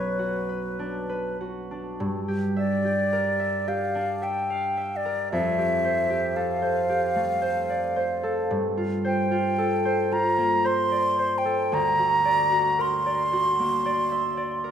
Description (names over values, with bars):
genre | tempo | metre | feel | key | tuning
classical, impressionist duo for flute and harp | 55 BPM | 3/4 | uneven beats, rubato | G dorian | A4 = 442 Hz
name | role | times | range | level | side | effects
silver concert flute | melody | 0.0-14.7 s | B4 to C6 | -24 LUFS | equal | none
concert harp | accompaniment | 0.0-14.7 s | B1 to F5 | -26 LUFS | right 1 dB | none
room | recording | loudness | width
moderate concert hall reverb, RT60 2.3 s | minimal, uncompressed stereo recording | -22 LUFS | side -8 dB against mid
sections
0.0-2.0 A section; 2.0-14.7 B section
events
none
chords
0.0 Bmadd9; 2.0 Gm6; 5.3 Fadd9; 8.5 Gm11; 11.7 Daug7